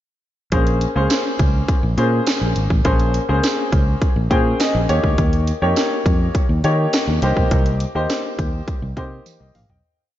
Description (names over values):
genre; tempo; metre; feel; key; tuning
early-eighties boogie funk; 103 BPM; 4/4; straight; Bb dorian; A4 = 440 Hz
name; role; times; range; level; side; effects
warm concert grand piano; accompaniment; 0.5-10.0 s; Bb3 to G5; -21 LUFS; left 1 dB; lush chorus
fingered electric bass; bass; 0.5-9.8 s; Ab1 to Eb3; -19 LUFS; equal; none
house drum kit; drums; 0.5-9.8 s; hi-hat, kick drum, snare drum, toms; -20 LUFS; equal; overdrive
tambourine; percussion; 1.1-9.4 s; none; -31 LUFS; right 8 dB; none
room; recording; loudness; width
light reverb; nothing above 7.5 kHz; -16 LUFS; side -13 dB against mid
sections
0.5-9.8 verse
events
grand piano fill 4.0-5.2; fade-out 7.5-9.8; drum fill 9.3-9.8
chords
0.5 Bbm9; 4.9 Eb7; 7.2 Cm7